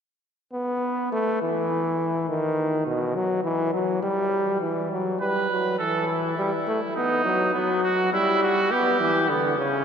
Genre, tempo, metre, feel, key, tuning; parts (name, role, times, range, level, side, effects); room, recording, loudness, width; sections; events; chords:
classical, imitative canzona for brass ensemble; 103 BPM; 4/4; straight; E minor; A4 = 440 Hz
bright trombone; accompaniment; 0.5-9.8 s; B2 to B3; -23 LUFS; left 1 dB
clear trumpet; second line; 5.2-9.8 s; B3 to B4; -23 LUFS; right 2 dB
wet cathedral reverb, RT60 4.6 s; lossy compression artefacts; -22 LUFS; side -7 dB against mid
0.0-4.6 A section; 4.6-9.8 B section
0.0 N.C.; 4.6 Em; 5.8 A5/E; 7.0 B; 8.1 Em/G; 9.3 Bm